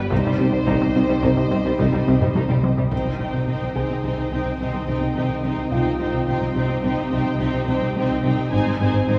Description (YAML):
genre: cinematic, hybrid orchestral and electronic film score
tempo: 107 BPM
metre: 5/4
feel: straight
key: C minor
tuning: A4 = 437 Hz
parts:
  - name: rich symphonic violin section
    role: melody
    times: 0.0-2.7 s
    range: C5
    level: -32 LUFS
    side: equal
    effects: none
  - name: warm symphonic violin section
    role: second line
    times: 0.0-9.2 s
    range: G3 to Ab5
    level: -31 LUFS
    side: equal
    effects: none
  - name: rich symphonic viola section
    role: accompaniment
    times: 0.0-9.2 s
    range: G3 to Eb4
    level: -30 LUFS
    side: equal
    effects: none
  - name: dark French horn section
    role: sustained chords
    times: 0.0-2.6 s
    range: G3 to Eb4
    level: -29 LUFS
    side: equal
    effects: none
  - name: ethereal airy pad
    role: sustained chords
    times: 0.0-9.2 s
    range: Eb3 to Eb5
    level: -31 LUFS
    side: equal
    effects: ensemble chorus, built-in reverb
  - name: plucky analog bass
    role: riff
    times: 0.0-9.2 s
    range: C2 to C3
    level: -28 LUFS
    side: equal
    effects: none
  - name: dark symphonic cello section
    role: bass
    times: 0.0-9.2 s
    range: Ab2 to C3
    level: -31 LUFS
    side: equal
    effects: none
  - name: detuned saw bass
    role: bass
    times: 0.0-9.2 s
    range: G1 to C2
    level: -31 LUFS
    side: equal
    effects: none
  - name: mellow tuba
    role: bass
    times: 0.1-2.4 s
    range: C2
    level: -28 LUFS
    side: equal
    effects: none
  - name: warm symphonic double bass section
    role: bass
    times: 0.1-9.2 s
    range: Ab1 to C2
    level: -33 LUFS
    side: equal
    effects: none
  - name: taiko ensemble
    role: drums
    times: 0.1-4.0, 8.5-9.2 s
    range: none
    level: -29 LUFS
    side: equal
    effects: none
  - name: impact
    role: sound effects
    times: 2.9-5.7 s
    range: none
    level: -36 LUFS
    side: equal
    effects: none
  - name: felt-muted upright piano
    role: texture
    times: 3.8-8.6 s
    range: F4 to Ab5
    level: -36 LUFS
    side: equal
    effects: digital delay
room: wet concert hall reverb, RT60 2.2 s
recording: small room reverb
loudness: -21 LUFS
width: mono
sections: 0.0-2.9 A section; 2.9-9.2 B section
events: drum fill 2.2-2.9; impact 2.9-5.7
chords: 0.1 Cm; 8.5 Ab